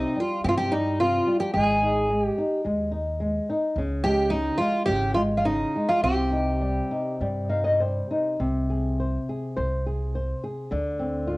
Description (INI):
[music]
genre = fado-style ballad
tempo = 99-110 BPM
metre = 4/4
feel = rubato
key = C minor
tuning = A4 = 440 Hz
[part]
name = fingerpicked twelve-string acoustic guitar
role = melody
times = 0.0-7.2 s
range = Eb4 to Ab4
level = -23 LUFS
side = right 1 dB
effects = plate reverb
[part]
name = flamenco guitar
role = accompaniment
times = 0.0-11.4 s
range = C3 to F5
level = -26 LUFS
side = left 1 dB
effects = cassette tape
[part]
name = upright bass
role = bass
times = 0.0-11.4 s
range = Ab1 to G2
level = -29 LUFS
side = equal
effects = none
[sound]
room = wet small room reverb, RT60 0.6 s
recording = home recording on cassette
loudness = -22 LUFS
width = side -21 dB against mid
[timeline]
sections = 0.0-11.4 A section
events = nylon-string guitar fill 7.2-8.4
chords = 0.0 C5; 1.6 Ab5; 3.8 Db5; 6.0 Cm; 8.4 Ab/C; 10.7 Dm7